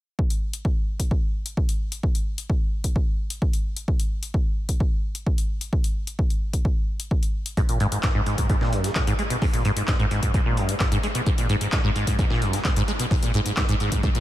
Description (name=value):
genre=acid house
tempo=130 BPM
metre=4/4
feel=straight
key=unclear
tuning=A4 = 440 Hz
part: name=electronic kick drum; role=drums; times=0.2-14.1 s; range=none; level=-23 LUFS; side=equal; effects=none
part: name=punchy analog drum machine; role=drums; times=0.3-14.2 s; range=handclaps, hi-hat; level=-31 LUFS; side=left 1 dB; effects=none
part: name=acid bass, saw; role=riff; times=7.6-14.2 s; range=Gb2 to Ab3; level=-23 LUFS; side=equal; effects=wide subtle chorus, sidechain pumping, diffuse ambient delay
part: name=breakbeat sampler-style drum kit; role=drums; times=7.6-14.1 s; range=hi-hat, snare drum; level=-37 LUFS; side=equal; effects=sidechain pumping on hats, high-pass filter on hats, high-pass filter on snare
room=light reverb, digital ambience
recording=none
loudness=-21 LUFS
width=side -14 dB against mid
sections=0.2-14.2 A section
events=none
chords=none